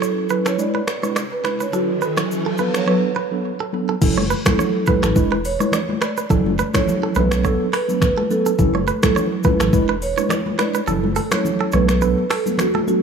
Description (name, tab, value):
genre	afrobeats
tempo	105 BPM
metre	4/4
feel	swing 55% on 16ths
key	F# minor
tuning	A4 = 440 Hz
part	mellow tine electric piano	accompaniment	0.0-13.0 s	F#3 to B4	-22 LUFS	right 1 dB	medium stereo tremolo
part	direct-recorded clean electric guitar	riff	0.0-12.8 s	A4 to D5	-26 LUFS	right 9 dB	tremolo, tape echo
part	afro-pop drum kit	drums	0.0-13.0 s	crash cymbal, finger snaps, hi-hat, kick drum, rim click, shaker	-22 LUFS	equal	none
part	riser	sound effects	0.7-2.9 s	none	-28 LUFS	left 1 dB	none
part	marimba with medium mallets	melody	0.3-13.0 s	F#4 to D5	-24 LUFS	right 3 dB	tape echo
part	warm sub bass	bass	4.0-12.1 s	E1 to B1	-23 LUFS	right 1 dB	none
part	congas	percussion	4.0-12.9 s	none	-24 LUFS	left 3 dB	none
room	light reverb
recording	none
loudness	-16 LUFS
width	side -6 dB against mid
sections	0.0-4.0 A section; 4.0-13.0 B section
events	riser 0.7-4.0; kick muted 10.9-13.0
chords	0.0 F#m7; 0.6 E7; 1.7 F#m7; 2.6 Bm7; 4.0 F#m7; 5.2 E7; 6.3 F#m7; 7.2 Bm7; 8.6 F#m7; 9.7 E7; 10.9 F#m7; 11.7 Bm7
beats	0.02 0.59 1.16 | 1.73 2.30 2.87 3.44 | 4.02 4.59 5.16 5.73 | 6.30 6.87 7.45 8.02 | 8.59 9.16 9.73 10.30 | 10.87 11.45 12.02 12.59